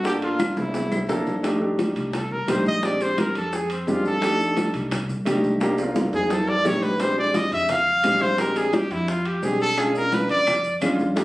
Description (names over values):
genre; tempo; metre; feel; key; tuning
Afro-Cuban jazz; 173 BPM; 4/4; straight; F mixolydian; A4 = 440 Hz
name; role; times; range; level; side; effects
clear trumpet; melody; 0.0-10.8 s; C4 to F5; -22 LUFS; equal; none
dark grand piano; accompaniment; 0.0-11.2 s; Ab3 to A4; -24 LUFS; equal; none
upright bass; bass; 0.0-11.2 s; G1 to F2; -32 LUFS; equal; none
maracas; percussion; 0.0-11.2 s; none; -44 LUFS; left 2 dB; none
timbales; percussion; 0.0-11.2 s; none; -32 LUFS; right 2 dB; none
bongos; percussion; 0.1-11.2 s; none; -30 LUFS; left 2 dB; none
congas; percussion; 0.1-11.2 s; none; -31 LUFS; equal; none
claves; percussion; 0.4-1.1, 9.8-11.0 s; none; -34 LUFS; left 2 dB; none
room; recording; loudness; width
wet club reverb, RT60 0.5 s; recorded on a phone in the room, studio reverb, compression; -20 LUFS; side -18 dB against mid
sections
0.0-1.4 A section; 1.4-11.2 B section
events
drum fill 0.6-1.4, 5.6-7.0; trumpet solo 1.4-11.2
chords
0.0 Gm7; 0.7 C13; 1.4 F13; 2.8 Bb13; 4.2 F13; 5.6 Cm7; 6.3 F13; 7.0 Bb13; 9.8 Bdim7